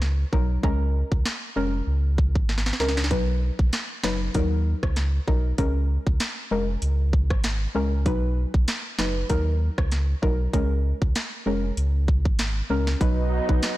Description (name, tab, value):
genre	dancehall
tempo	97 BPM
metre	4/4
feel	swing 56% on 16ths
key	Bb phrygian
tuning	A4 = 440 Hz
part	soft round pluck	accompaniment	0.0-13.6 s	Gb3 to B4	-28 LUFS	left 2 dB	chorus, sidechain pumping
part	sub bass with octave	bass	0.0-13.6 s	F1 to Eb2	-24 LUFS	equal	none
part	island pop drum kit	drums	0.0-13.8 s	hi-hat, kick drum, rim click, snare drum	-25 LUFS	equal	none
part	lush unison pad	sustained chords	13.0-13.8 s	F#3 to D#4	-27 LUFS	right 2 dB	chorus, sidechain pumping
room	little or no reverb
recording	blown-out, overdriven recording, overdrive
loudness	-21 LUFS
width	side -16 dB against mid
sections	0.0-13.0 A section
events	drum fill 2.5-3.1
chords	0.0 Ebm; 0.6 Bbm7; 3.1 B; 4.3 Ebm; 5.6 Bbm7; 8.1 B; 9.3 Ebm; 10.5 Bbm7; 13.0 B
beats	0.02 | 0.64 1.26 1.87 2.49 | 3.11 3.73 4.35 4.97 | 5.59 6.20 6.82 7.44 | 8.06 8.68 9.30 9.92 | 10.53 11.15 11.77 12.39 | 13.01 13.63